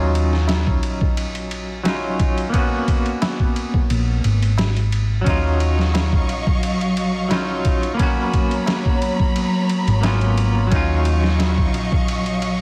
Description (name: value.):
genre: trip hop.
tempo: 88 BPM.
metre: 4/4.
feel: straight.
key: Eb minor.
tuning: A4 = 440 Hz.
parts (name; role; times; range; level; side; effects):
clean electric guitar; accompaniment; 0.0-12.6 s; Gb3 to Gb4; -26 LUFS; equal; tremolo, low-pass filter, tape echo.
hollow-body short-scale fingered electric bass; bass; 0.0-12.6 s; Ab1 to Eb2; -22 LUFS; equal; none.
trip hop sampler-style drum kit; drums; 0.2-12.6 s; kick drum, ride cymbal, snare drum; -24 LUFS; equal; none.
tabla; percussion; 0.5-11.5 s; none; -37 LUFS; equal; none.
clear symphonic string section; sustained chords; 5.3-12.6 s; Gb3 to Db6; -26 LUFS; equal; none.
room: light reverb, digital ambience.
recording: dense, heavily limited modern master, vinyl crackle.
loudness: -19 LUFS.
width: mono.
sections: 0.0-12.6 A section.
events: filter sweep on clean electric guitar 0.0-12.6.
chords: 0.0 Ebm9; 2.5 Abm11; 5.3 Ebm9; 8.0 Abm11; 10.7 Ebm9.